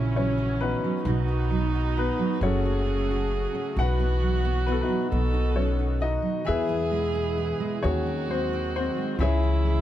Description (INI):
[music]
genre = acoustic folk-pop ballad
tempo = 44 BPM (dotted quarters)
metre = 6/8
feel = straight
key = unclear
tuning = A4 = 441 Hz
[part]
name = warm upright piano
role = melody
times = 0.0-9.8 s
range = B3 to F#5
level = -29 LUFS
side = left 4 dB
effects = none
[part]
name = dark viola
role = second line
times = 0.0-9.8 s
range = C#4 to A4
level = -31 LUFS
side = right 3 dB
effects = none
[part]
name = fingerpicked steel-string acoustic guitar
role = accompaniment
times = 0.0-9.8 s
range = B2 to B4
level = -31 LUFS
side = right 5 dB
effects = none
[part]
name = analog string pad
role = sustained chords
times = 0.0-9.8 s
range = B2 to F#4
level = -36 LUFS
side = left 1 dB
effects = ensemble chorus
[part]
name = upright bass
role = bass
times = 0.0-9.8 s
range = F#1 to E2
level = -26 LUFS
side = equal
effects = none
[sound]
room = little or no reverb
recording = none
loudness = -23 LUFS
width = side -12 dB against mid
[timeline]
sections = 0.0-9.8 A section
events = none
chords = 0.0 F#7/A#; 1.0 B; 2.4 F#m; 3.8 Bsus4; 5.1 B; 6.5 E; 7.8 G#7/D#; 9.2 C#m